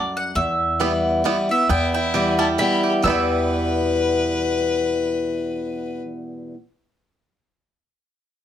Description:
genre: bluegrass.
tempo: 134 BPM.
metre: 3/4.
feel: swing 55% on 8ths.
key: E minor.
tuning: A4 = 440 Hz.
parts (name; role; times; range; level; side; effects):
mandolin; melody; 0.0-6.0 s; D5 to E6; -23 LUFS; right 1 dB; plate reverb.
picked steel-string acoustic guitar; accompaniment; 0.0-6.6 s; E2 to E4; -22 LUFS; left 1 dB; none.
upright bass; bass; 0.4-6.0 s; E2; -28 LUFS; equal; none.
bluegrass banjo; melody; 0.8-6.1 s; G3 to G4; -26 LUFS; right 7 dB; plate reverb.
rich fiddle; second line; 1.5-6.0 s; B3 to B4; -24 LUFS; left 5 dB; none.
room: moderate studio ambience, RT60 0.5 s.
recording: none.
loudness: -18 LUFS.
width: side -10 dB against mid.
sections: 0.0-1.7 A section; 1.7-3.0 B section; 3.0-5.7 C section.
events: none.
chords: 0.4 Em.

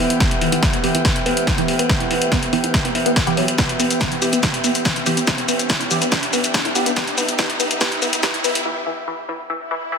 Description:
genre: driving peak-time techno.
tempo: 142 BPM.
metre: 4/4.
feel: straight.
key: E minor.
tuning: A4 = 440 Hz.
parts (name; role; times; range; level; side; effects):
tight sequenced synth; riff; 0.0-10.0 s; E3 to E4; -25 LUFS; left 1 dB; chorus, phaser, tube saturation, vintage 12-bit sampler grit, sidechain pumping, digital delay.
filtered dub chord stab; stabs; 0.0-8.3 s; E3 to G4; -25 LUFS; right 4 dB; phaser, vintage 12-bit sampler grit, sidechain pumping, digital delay.
metallic inharmonic drone; drone; 0.0-8.7 s; E3 to B3; -28 LUFS; right 2 dB; chorus, built-in reverb, sidechain pumping.
riser and swell; sound effects; 0.8-10.0 s; none; -29 LUFS; right 1 dB; none.
airy breathy pad; texture; 0.0-8.7 s; B3 to G5; -26 LUFS; equal; chorus, sidechain pumping.
punchy analog drum machine; drums; 0.1-8.6 s; hi-hat, shaker, snare drum; -20 LUFS; left 1 dB; high-pass filter on snare, sidechain pumping on hats, high-pass filter on hats, sidechain pumping on perc, high-pass filter on perc, high-pass filter on room.
electronic kick drum; drums; 0.2-8.3 s; none; -21 LUFS; equal; overdrive.
room: wet stone room reverb, RT60 1.3 s.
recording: dense, heavily limited modern master, high-pass filter.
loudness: -16 LUFS.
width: side -6 dB against mid.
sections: 0.0-10.0 A section.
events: build-up 0.0-10.0; filter sweep on synth arpeggio sound 0.0-10.0; filter sweep on synth stab 0.0-10.0; filter sweep 0.0-10.0; riser 0.8-8.7; break 8.7-10.0; swell 9.6-10.0.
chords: 0.0 Em.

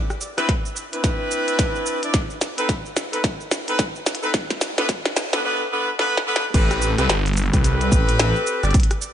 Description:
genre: glitch hop.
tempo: 109 BPM.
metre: 4/4.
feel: swing 61% on 16ths.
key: A minor.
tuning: A4 = 441 Hz.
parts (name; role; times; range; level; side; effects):
glitchy drum kit; drums; 0.1-9.1 s; crash cymbal, hi-hat, rim click, shaker, snare drum; -24 LUFS; equal; studio ambience.
clear horn section; stabs; 0.4-8.7 s; B3 to D5; -23 LUFS; equal; sidechain pumping, digital delay.
electronic kick drum; drums; 0.5-8.9 s; none; -20 LUFS; equal; studio ambience.
phased detuned saw bass; bass; 6.5-8.7 s; G1 to C2; -20 LUFS; equal; phaser, tube saturation.
room: light reverb, digital ambience.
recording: high-pass filter, nothing above 10.3 kHz.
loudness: -18 LUFS.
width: side -10 dB against mid.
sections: 0.0-6.5 A section; 6.5-9.1 B section.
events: build-up 0.0-6.5; drum fill 0.0-5.4, 6.0-6.5; drop 6.5-9.1.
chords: 0.0 Cmaj9; 2.1 B7b9; 4.3 Bm7; 6.5 Am9.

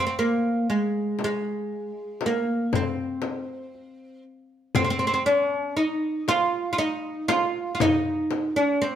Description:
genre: Arabic maqam ensemble.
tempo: 118 BPM (eighths).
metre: 10/8.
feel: straight.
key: C maqam bayati.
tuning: A4 = 440 Hz.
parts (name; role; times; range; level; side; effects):
oud; melody; 0.0-9.0 s; Ab3 to F4; -23 LUFS; right 1 dB; none.
darbuka; percussion; 1.2-9.0 s; none; -34 LUFS; left 6 dB; none.
frame drum; percussion; 1.2-8.5 s; none; -30 LUFS; left 5 dB; none.
room: moderate stone room reverb, RT60 1.1 s.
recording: band playing live in one room.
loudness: -22 LUFS.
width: side -10 dB against mid.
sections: 0.0-9.0 A section.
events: none.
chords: none.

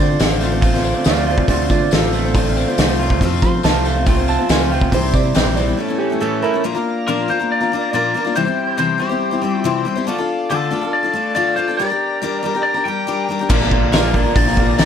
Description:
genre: folk rock and heartland rock.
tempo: 140 BPM.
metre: 4/4.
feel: straight.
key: D minor.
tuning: A4 = 440 Hz.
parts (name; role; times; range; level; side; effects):
clean lap steel guitar; second line; 0.0-6.6 s; F4 to C6; -23 LUFS; right 8 dB; none.
picked steel-string acoustic guitar; accompaniment; 0.0-14.9 s; A2 to C5; -21 LUFS; left 5 dB; none.
pedal harmonium; sustained chords; 0.0-14.9 s; E3 to Bb5; -27 LUFS; right 1 dB; none.
electric guitar through a small old amp; riff; 0.0-6.6, 13.5-14.9 s; F2 to F4; -22 LUFS; right 4 dB; warbly pitch drift.
modern bright fingered electric bass; bass; 0.0-5.7, 13.5-14.9 s; A1 to F3; -21 LUFS; equal; none.
loose indie drum kit; drums; 0.2-5.5, 13.5-14.9 s; crash cymbal, hi-hat, kick drum, snare drum; -17 LUFS; equal; none.
tambourine; percussion; 0.2-5.7, 13.9-14.9 s; none; -34 LUFS; left 14 dB; none.
lightly driven lead guitar; melody; 7.1-14.9 s; G4 to G5; -20 LUFS; left 1 dB; none.
room: light reverb, small room ambience.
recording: none.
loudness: -15 LUFS.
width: side -8 dB against mid.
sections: 0.0-6.6 A section; 6.6-14.9 B section.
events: electric slide guitar solo 0.0-6.6; break 5.8-6.6.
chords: 0.0 Dm7; 3.2 F; 4.9 C; 5.8 A; 6.6 Bb; 8.4 C; 10.1 Dm; 11.8 Gm; 13.5 Bb.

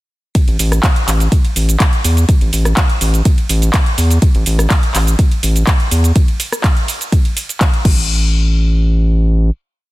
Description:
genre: progressive house.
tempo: 124 BPM.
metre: 4/4.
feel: straight.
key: unclear.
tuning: A4 = 440 Hz.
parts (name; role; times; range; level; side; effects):
electronic kick drum; drums; 0.4-8.0 s; none; -12 LUFS; equal; small room ambience.
pop drum kit; drums; 0.4-8.0 s; crash cymbal, handclaps, hi-hat, ride cymbal, rim click, shaker; -19 LUFS; equal; small room ambience.
round analog bass; bass; 0.5-9.5 s; A1 to E2; -12 LUFS; equal; sidechain pumping.
room: little or no reverb.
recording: dense, heavily limited modern master.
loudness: -11 LUFS.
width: side -18 dB against mid.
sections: 0.4-8.1 drop; 8.1-9.9 final hit.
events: drop 0.4-8.1.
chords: none.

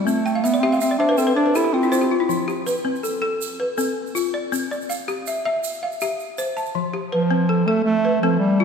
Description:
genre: west african traditional, West African string and xylophone music.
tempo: 108 BPM (dotted quarters).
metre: 12/8.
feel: straight.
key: F lydian.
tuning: A4 = 440 Hz.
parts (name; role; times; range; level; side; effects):
mellow bass clarinet; melody; 0.0-2.2, 7.1-8.6 s; F3 to E4; -19 LUFS; right 2 dB; none.
balafon; arpeggios; 0.0-8.6 s; F3 to A5; -22 LUFS; left 2 dB; none.
egg shaker; percussion; 0.1-6.7 s; none; -34 LUFS; right 8 dB; none.
room: wet church reverb, RT60 3.0 s.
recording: recorded in a church or concert hall.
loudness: -19 LUFS.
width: side -6 dB against mid.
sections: 0.0-6.8 A section; 6.8-8.6 B section.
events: balafon fill 0.3-2.3; bass clarinet solo 6.8-8.6.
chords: 0.1 C; 2.3 F; 4.5 C; 6.8 F.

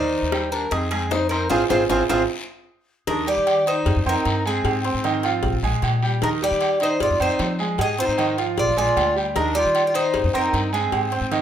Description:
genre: latin, Cuban son and guajira.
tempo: 153 BPM.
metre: 4/4.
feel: straight.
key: Eb major.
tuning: A4 = 440 Hz.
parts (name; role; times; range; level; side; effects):
Cuban tres; melody; 0.0-11.4 s; F4 to Eb5; -23 LUFS; equal; none.
bright reedy bass recorder; second line; 0.0-11.4 s; C4 to Ab4; -28 LUFS; left 3 dB; none.
clear grand piano; arpeggios; 0.0-11.4 s; Eb3 to Eb6; -25 LUFS; right 4 dB; none.
upright bass; bass; 0.0-11.4 s; Ab1 to F3; -26 LUFS; left 1 dB; none.
bongos and cowbell; percussion; 0.3-11.4 s; none; -31 LUFS; left 8 dB; none.
guiro; percussion; 0.3-11.4 s; none; -35 LUFS; left 5 dB; none.
timbales and agogo bells; percussion; 0.3-11.4 s; none; -28 LUFS; right 7 dB; none.
room: moderate large studio reverb, RT60 0.8 s.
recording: minimal, uncompressed stereo recording.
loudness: -19 LUFS.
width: side -9 dB against mid.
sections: 0.0-3.1 A section; 3.1-11.4 B section.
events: band accent 1.5-3.1; drum fill 1.9-3.1.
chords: 0.0 Ebmaj7; 0.7 Fm7; 1.5 Ab6; 2.3 N.C.; 3.1 Ebmaj7; 3.9 Fm7; 4.6 Ab6; 5.4 Bb5; 6.2 Ebmaj7; 7.0 Fm7; 7.8 Ab6; 8.6 Bb7; 9.4 Ebmaj7; 10.1 Fm7.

